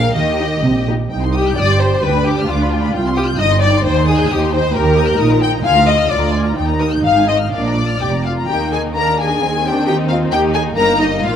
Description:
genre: quick classical-period movement for string orchestra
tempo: 120-136 BPM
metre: 2/4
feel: rubato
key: C minor, Eb major from 4.7 s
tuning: A4 = 440 Hz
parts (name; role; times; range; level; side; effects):
- warm symphonic violin section; melody; 0.0-11.4 s; Eb5 to G6; -21 LUFS; left 4 dB; none
- warm symphonic violin section; second line; 0.0-11.4 s; Bb3 to G5; -18 LUFS; left 4 dB; none
- dark symphonic cello section; bass; 0.0-11.4 s; C2 to Eb3; -20 LUFS; right 2 dB; none
- rich symphonic double bass section; bass; 0.0-11.4 s; F1 to Eb2; -20 LUFS; right 3 dB; none
- warm symphonic viola section; accompaniment; 0.4-11.4 s; D4 to Bb4; -20 LUFS; right 1 dB; none
room: moderate concert hall reverb, RT60 2.1 s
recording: close, detailed microphones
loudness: -13 LUFS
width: side -8 dB against mid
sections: 0.0-1.1 A section; 1.1-8.5 B section; 8.5-11.4 A section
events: none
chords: 0.1 Eb; 1.1 Cm; 2.0 G7/D; 2.9 Cm; 3.8 Cm/Eb; 4.7 Eb; 5.6 Bb7/D; 6.6 Eb; 7.0 Fm/Ab; 7.5 Bb; 8.5 Eb5; 9.4 Fm13/Eb; 10.3 Eb; 10.8 Eb/G

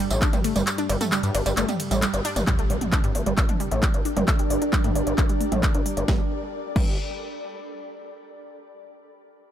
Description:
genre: driving peak-time techno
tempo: 133 BPM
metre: 4/4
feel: straight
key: G minor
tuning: A4 = 440 Hz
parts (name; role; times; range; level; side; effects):
- analog pluck; riff; 0.0-7.0 s; G3 to D4; -29 LUFS; equal; chorus, sidechain pumping, dub echo
- analog drone; drone; 0.0-2.5 s; G2 to G3; -34 LUFS; left 1 dB; chorus, sidechain pumping
- gritty driven synth bass; bass; 0.1-7.0 s; G1 to G2; -26 LUFS; equal; sidechain pumping
- techno drum kit; drums; 0.1-6.8 s; crash cymbal, handclaps, hi-hat, ride cymbal, snare drum, tambourine, toms; -28 LUFS; equal; sidechain pumping on hats, sidechain pumping on perc, sidechain pumping on toms, sidechain pumping on cymbals
- electronic kick drum; drums; 0.2-6.8 s; none; -23 LUFS; equal; none
- impact; sound effects; 2.5-4.3 s; none; -34 LUFS; equal; none
- ethereal airy pad; texture; 3.6-7.8 s; D4 to B5; -31 LUFS; right 1 dB; ensemble chorus, built-in reverb, sidechain pumping
room: digital ambience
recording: none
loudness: -21 LUFS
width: side -10 dB against mid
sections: 0.0-2.5 A section; 2.5-6.1 B section; 6.1-7.9 C section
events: drop 0.0-2.5; kick drops out 0.7-2.5; band accent 2.0; impact 2.5-4.3; filter sweep on synth arpeggio sound 2.5-6.1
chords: 0.0 N.C.; 2.5 Gm; 6.1 G

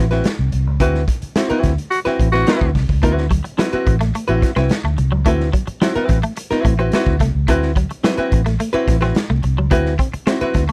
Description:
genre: funk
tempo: 108 BPM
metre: 4/4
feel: straight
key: D mixolydian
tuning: A4 = 444 Hz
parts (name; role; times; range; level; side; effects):
- archtop guitar, miked and amplified; accompaniment; 0.0-10.6 s; C4 to C5; -21 LUFS; equal; none
- vintage muted fingered electric bass; bass; 0.0-10.7 s; A1 to D2; -21 LUFS; equal; none
- raw garage drum kit; drums; 0.1-10.7 s; hi-hat, kick drum, snare drum; -22 LUFS; equal; none
- raspy tenor saxophone; second line; 1.9-2.7 s; F#4; -21 LUFS; equal; none
- semi-hollow electric guitar; riff; 3.0-10.7 s; F#3 to C4; -26 LUFS; equal; analog chorus
room: little or no reverb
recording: dry, close 1970s-style studio recording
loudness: -17 LUFS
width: mono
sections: 0.0-10.7 A section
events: band accent 0.8-3.0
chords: 0.0 D13

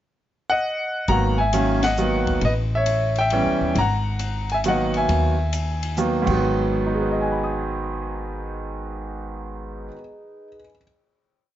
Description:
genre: jazz piano trio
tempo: 135 BPM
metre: 3/4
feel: swing 67% on 8ths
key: G# minor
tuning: A4 = 439 Hz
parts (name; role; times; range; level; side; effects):
- clear concert grand piano; melody; 0.5-10.8 s; G#2 to D#6; -22 LUFS; equal; none
- upright bass; bass; 1.1-9.9 s; G#1 to D#2; -25 LUFS; equal; none
- compact cocktail drum kit; drums; 1.1-6.3 s; crash cymbal, hi-hat, kick drum, ride cymbal, snare drum; -33 LUFS; left 3 dB; none
room: light reverb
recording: nothing above 7.6 kHz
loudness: -20 LUFS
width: side -12 dB against mid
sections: 0.0-1.1 pickup bar; 1.1-6.4 A section; 6.4-9.1 final chord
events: band accent 1.8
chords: 0.0 N.C.; 1.1 G#m7; 2.4 A9; 3.8 G#m7

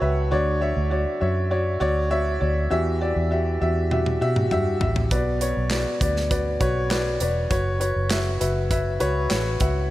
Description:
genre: piano-driven pop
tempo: 100 BPM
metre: 4/4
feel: straight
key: unclear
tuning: A4 = 441 Hz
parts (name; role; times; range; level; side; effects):
- clear upright piano; accompaniment; 0.0-9.9 s; B2 to C#6; -24 LUFS; left 1 dB; none
- vintage muted fingered electric bass; bass; 0.0-9.9 s; E1 to B2; -24 LUFS; equal; none
- modern studio drum kit; drums; 3.9-9.7 s; handclaps, hi-hat, kick drum, snare drum, toms; -26 LUFS; right 1 dB; none
room: light reverb, small room reverb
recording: none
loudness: -20 LUFS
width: side -15 dB against mid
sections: 0.0-9.9 A section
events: upright piano fill 0.0-0.3, 8.7-9.9; drum fill 3.9-5.1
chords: 0.3 Dmaj7; 2.7 Emadd9; 5.1 Bm; 7.5 F#sus4

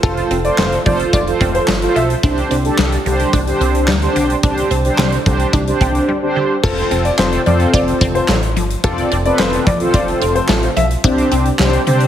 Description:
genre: synth-pop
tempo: 109 BPM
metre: 4/4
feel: straight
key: unclear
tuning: A4 = 439 Hz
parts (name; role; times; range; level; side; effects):
- warm baby grand piano; second line; 0.0-2.0, 6.6-10.8 s; A4 to E5; -21 LUFS; left 3 dB; digital delay
- mellow synth brass; accompaniment; 0.0-12.1 s; C4 to D5; -17 LUFS; right 1 dB; chorus
- resonant blip pluck; arpeggios; 0.0-12.1 s; D3 to F4; -23 LUFS; right 1 dB; phaser, digital delay
- chorused synth bass; bass; 0.0-12.1 s; F1 to C3; -19 LUFS; equal; none
- huge arena drum kit; drums; 0.0-12.1 s; crash cymbal, handclaps, hi-hat, kick drum, snare drum; -19 LUFS; equal; none
room: light reverb, studio reverb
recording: heavily compressed radio sound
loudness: -13 LUFS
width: side -10 dB against mid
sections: 0.0-6.6 A section; 6.6-12.1 B section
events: silent gap 6.1-6.6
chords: 0.0 F; 2.2 Csus2; 6.6 F; 11.0 Csus2

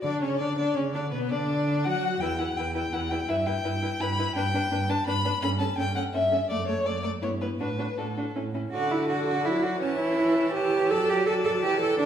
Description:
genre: quick classical-period movement for string quartet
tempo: 166 BPM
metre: 3/4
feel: straight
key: D major from 4.4 s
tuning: A4 = 439 Hz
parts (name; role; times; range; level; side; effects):
- warm violin; melody; 0.0-12.1 s; E4 to A5; -35 LUFS; left 8 dB; none
- rich violin; second line; 0.0-12.1 s; A4 to B5; -30 LUFS; left 3 dB; none
- rich viola; accompaniment; 0.0-12.1 s; D3 to F#4; -30 LUFS; right 1 dB; none
- warm cello; bass; 0.0-12.1 s; E2 to A4; -28 LUFS; right 3 dB; none
room: wet recital hall reverb, RT60 1.4 s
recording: recorded in a church or concert hall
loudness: -24 LUFS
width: side -9 dB against mid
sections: 0.0-8.7 A section; 8.7-12.1 B section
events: none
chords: 0.0 N.C.; 1.1 Bm; 2.2 E5; 3.3 Em/G; 4.4 G; 5.4 A7/G; 6.5 Dmaj7/F#; 7.2 Em/G; 7.6 D/A; 8.4 A; 8.7 D; 9.8 A7/E; 10.9 D/F#

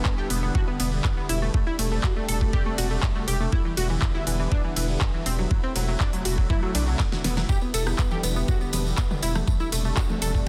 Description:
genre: progressive house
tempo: 121 BPM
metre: 4/4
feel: straight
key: E minor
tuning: A4 = 441 Hz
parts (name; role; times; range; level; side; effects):
- lush unison pad; sustained chords; 0.0-10.5 s; C3 to E4; -35 LUFS; equal; chorus, phaser, sidechain pumping
- tight sequenced synth; arpeggios; 0.0-10.4 s; E3 to A4; -33 LUFS; equal; chorus, sidechain pumping, digital delay
- electronic kick drum; drums; 0.1-10.4 s; none; -26 LUFS; equal; none
- pop drum kit; drums; 0.1-10.3 s; handclaps, hi-hat, ride cymbal, snare drum; -34 LUFS; equal; none
- round analog bass; bass; 0.3-10.4 s; E1 to B1; -28 LUFS; equal; sidechain pumping
- tambourine; percussion; 7.5-10.4 s; none; -39 LUFS; equal; none
- deep house drum kit; percussion; 7.9-10.2 s; congas, rim click, toms; -34 LUFS; equal; soft clipping on snare, sidechain pumping on snare, sidechain pumping on perc, sidechain pumping on toms
room: digital ambience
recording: dense, heavily limited modern master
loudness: -25 LUFS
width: mono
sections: 0.0-10.5 A section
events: drum fill 7.0-7.5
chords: 0.0 Em7; 1.5 D7sus4/E; 3.5 Em7; 5.5 F#m7b5/E; 7.5 Em7; 9.5 D7sus4/E

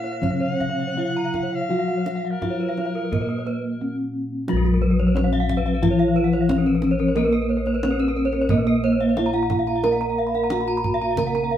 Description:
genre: Balinese gamelan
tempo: 88 BPM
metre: 4/4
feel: uneven beats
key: Bb pelog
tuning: A4 = 441 Hz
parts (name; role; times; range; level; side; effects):
- gamelan-type bronze metallophone; melody; 0.0-11.6 s; Gb3-40c to Bb4; -23 LUFS; right 1 dB; none
- bright reedy tenor recorder; second line; 0.0-4.0 s; Bb4 to Gb5-38c; -32 LUFS; left 2 dB; none
- gamelan-type bronze metallophone; accompaniment; 0.0-11.6 s; C3+50c to Bb3; -27 LUFS; left 4 dB; none
- gamelan-type bronze metallophone; arpeggios; 0.0-11.5 s; Gb4-40c to Bb5; -30 LUFS; left 2 dB; none
- gamelan-type bronze metallophone; arpeggios; 0.0-11.6 s; Gb4-40c to Cb6; -28 LUFS; right 3 dB; none
- gamelan-type bossed gongs; bass; 0.0-11.6 s; Bb1 to Bb4; -27 LUFS; left 1 dB; none
- kendang; percussion; 0.0-11.4 s; none; -29 LUFS; right 2 dB; none
room: wet studio reverb, RT60 0.7 s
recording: band playing live in one room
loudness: -19 LUFS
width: side -10 dB against mid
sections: 0.0-4.5 A section; 4.5-11.6 B section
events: break 3.5-4.5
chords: none

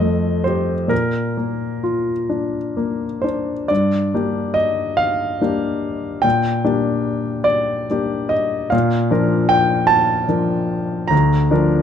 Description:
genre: classical, romantic nocturne for solo piano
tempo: 41-52 BPM (dotted quarters)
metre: 6/8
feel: rubato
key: Bb major, G minor from 3.7 s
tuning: A4 = 440 Hz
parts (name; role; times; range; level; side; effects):
- warm concert grand piano; solo; 0.0-11.8 s; D2 to Bb5; -16 LUFS; left 1 dB; none
room: moderate large studio reverb, RT60 0.9 s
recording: dark, warm production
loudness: -16 LUFS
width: side -8 dB against mid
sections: 0.0-3.7 A section; 3.7-11.8 B section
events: none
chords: 0.0 F9; 0.9 Bb; 3.7 Gm; 6.2 Gm/Bb; 8.7 Bb; 11.1 Bb/D

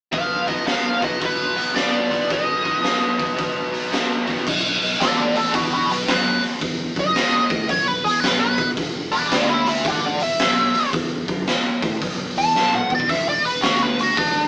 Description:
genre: blues rock power trio and southern rock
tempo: 111 BPM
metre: 4/4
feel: swing 65% on 8ths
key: unclear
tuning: A4 = 440 Hz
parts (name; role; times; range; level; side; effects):
- biting lead guitar; melody; 0.1-14.5 s; D4 to A5; -23 LUFS; equal; wah, overdrive
- biting overdriven guitar; riff; 0.1-4.4 s; B2 to B3; -26 LUFS; equal; none
- raw garage drum kit; drums; 0.1-14.3 s; crash cymbal, hi-hat, kick drum, snare drum, toms; -24 LUFS; equal; none
- overdriven fingered electric bass; bass; 4.5-14.5 s; E1 to B2; -32 LUFS; equal; none
room: light reverb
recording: band playing live in one room, small speaker sound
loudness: -20 LUFS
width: mono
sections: 0.1-4.5 A section; 4.5-14.5 B section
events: lead electric guitar solo 4.5-14.5; drum fill 12.5-13.1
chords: 0.1 B; 4.5 B7(no3); 8.8 E5; 10.9 B5; 13.1 E5

